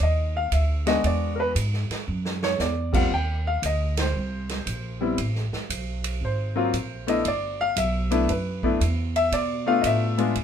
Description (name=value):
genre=jazz piano trio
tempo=116 BPM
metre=4/4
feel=swing 67% on 8ths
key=G major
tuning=A4 = 440 Hz
part: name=clear grand piano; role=melody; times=0.0-10.3 s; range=Gb3 to G5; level=-24 LUFS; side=left 3 dB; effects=none
part: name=upright bass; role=bass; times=0.0-10.4 s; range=G1 to B2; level=-26 LUFS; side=right 1 dB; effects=none
part: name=swinging big-band drum kit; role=drums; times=0.0-10.4 s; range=crash cymbal, hi-hat, kick drum, ride cymbal, snare drum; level=-31 LUFS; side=right 3 dB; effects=none
room=light reverb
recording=minimal, uncompressed stereo recording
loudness=-22 LUFS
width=side -8 dB against mid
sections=0.0-10.4 A section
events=drum fill 2.1-2.6; band accent 3.9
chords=0.0 Cmadd9 (rootless); 1.0 E9; 3.1 Eb6; 5.2 Asus2; 6.2 Abadd9; 7.3 G6; 9.3 Bm7b5